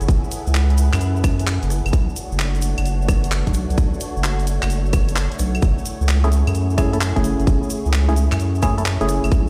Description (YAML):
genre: UK garage, two-step garage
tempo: 130 BPM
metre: 4/4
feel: swing 67% on 16ths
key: F# minor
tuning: A4 = 441 Hz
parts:
  - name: soft string machine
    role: sustained chords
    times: 0.0-9.5 s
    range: A3 to C#5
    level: -34 LUFS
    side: equal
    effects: ensemble chorus, vintage 12-bit sampler grit, sidechain pumping
  - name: saturated sub bass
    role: bass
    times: 0.0-9.4 s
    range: F#1 to F#2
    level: -21 LUFS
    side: equal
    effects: none
  - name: garage drum kit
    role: drums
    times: 0.0-9.4 s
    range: claves, handclaps, hi-hat, rim click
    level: -29 LUFS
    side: equal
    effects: none
  - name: cabasa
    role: percussion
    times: 0.0-9.5 s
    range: none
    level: -38 LUFS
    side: equal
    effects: none
  - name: warbly tape-like pad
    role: texture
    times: 0.0-9.5 s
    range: A3 to F#5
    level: -36 LUFS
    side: equal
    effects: chorus, built-in reverb, sidechain pumping
  - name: electronic kick drum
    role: drums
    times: 0.1-9.4 s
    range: none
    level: -20 LUFS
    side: equal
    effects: none
  - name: percussive organ stab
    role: stabs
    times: 6.2-9.3 s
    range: A3 to A4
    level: -25 LUFS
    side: equal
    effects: chorus, phaser, dub echo
room: digital ambience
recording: played on a big sound system in a bare room, stone room reverb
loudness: -19 LUFS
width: mono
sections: 0.0-9.5 A section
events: fade-in on ambient pad 0.0-9.5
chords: 0.0 F#m7; 1.9 Bm7; 5.6 F#m7